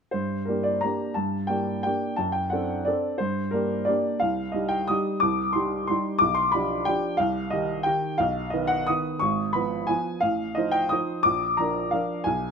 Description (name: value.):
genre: classical, piano waltz.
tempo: 178 BPM.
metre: 3/4.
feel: uneven beats, rubato.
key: G minor.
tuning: A4 = 440 Hz.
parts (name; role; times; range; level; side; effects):
clear upright piano; solo; 0.1-12.5 s; Ab1 to Eb6; -23 LUFS; equal; none.
room: light reverb.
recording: none.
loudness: -23 LUFS.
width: side -6 dB against mid.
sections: 0.1-12.5 A section.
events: none.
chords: 0.1 Gm; 2.2 D7/F#; 3.2 Gm; 4.2 Cm; 6.2 G7/B; 7.2 Cm; 8.2 B; 9.2 Fdim/Ab; 10.2 F7/A; 11.2 Bb.